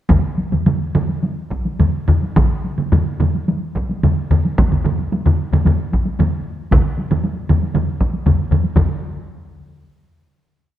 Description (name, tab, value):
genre	japanese traditional, taiko drum ensemble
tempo	105-127 BPM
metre	4/4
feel	straight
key	none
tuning	none
part	solo taiko drums	percussion	0.1-9.2 s	none	-21 LUFS	right 6 dB	none
part	taiko ensemble	percussion	0.1-9.0 s	none	-22 LUFS	equal	none
part	taiko ensemble	percussion	0.1-9.2 s	none	-18 LUFS	left 2 dB	none
part	taiko ensemble	percussion	0.1-9.0 s	none	-19 LUFS	equal	none
room	moderate scoring stage reverb, RT60 1.7 s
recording	none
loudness	-15 LUFS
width	side -12 dB against mid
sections	0.1-8.8 A section; 8.8-10.7 final hit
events	speeding up 0.1-10.7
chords	none